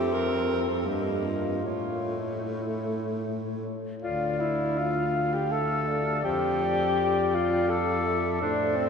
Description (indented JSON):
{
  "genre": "classical, lyrical piece for single-reed quartet",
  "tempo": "75-85 BPM",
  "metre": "3/4",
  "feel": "rubato",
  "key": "D minor",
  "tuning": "A4 = 440 Hz",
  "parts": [
    { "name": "warm clarinet", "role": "melody", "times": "0.0-8.9 s", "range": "C5 to F5", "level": "-34 LUFS", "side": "left 3 dB", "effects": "none" },
    { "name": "clear alto saxophone", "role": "second line", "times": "0.0-8.9 s", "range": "E4 to F5", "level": "-32 LUFS", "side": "right 2 dB", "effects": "none" },
    { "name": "mellow tenor saxophone", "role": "accompaniment", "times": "0.0-8.9 s", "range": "A3 to A4", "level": "-28 LUFS", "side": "left 2 dB", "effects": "none" },
    { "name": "clear baritone saxophone", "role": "bass", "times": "0.0-8.9 s", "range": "D2 to A2", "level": "-31 LUFS", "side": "equal", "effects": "none" }
  ],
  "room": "wet cathedral reverb, RT60 4.9 s",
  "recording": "heard from further back in the room",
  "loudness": "-25 LUFS",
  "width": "side -6 dB against mid",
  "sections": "0.0-4.0 A section; 4.0-8.9 B section",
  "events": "none",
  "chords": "0.0 Fmaj7(no3); 0.9 Eb/G; 1.6 A; 4.0 Dm; 6.2 Dm/F",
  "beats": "0.11 0.86 | 1.64 2.44 3.24 | 4.02 4.78 5.52 | 6.24 6.97 7.70 | 8.41"
}